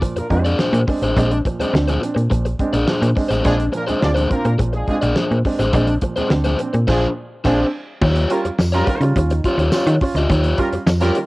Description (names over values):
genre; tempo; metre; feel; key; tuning
funk; 105 BPM; 4/4; straight; Bb mixolydian; A4 = 440 Hz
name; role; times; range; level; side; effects
crunchy overdriven guitar; accompaniment; 0.0-11.2 s; D4 to Eb5; -22 LUFS; left 2 dB; cassette tape
warm upright piano; stabs; 0.0-11.3 s; Bb2 to F4; -23 LUFS; right 2 dB; cassette tape
damped 70s drum kit; drums; 0.0-11.3 s; crash cymbal, hi-hat, kick drum, snare drum; -22 LUFS; equal; cassette tape
mellow horn section; second line; 0.2-11.2 s; Ab3 to D5; -25 LUFS; equal; cassette tape
slap-like FM bass; bass; 0.2-11.1 s; A1 to Eb3; -18 LUFS; equal; none
tambourine; percussion; 8.6-11.0 s; none; -36 LUFS; left 2 dB; none
room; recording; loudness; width
small room ambience; home recording on cassette; -16 LUFS; side -21 dB against mid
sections
0.0-8.0 A section; 8.0-11.3 B section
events
band accent 6.9-8.0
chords
0.0 Bb9; 8.0 Eb9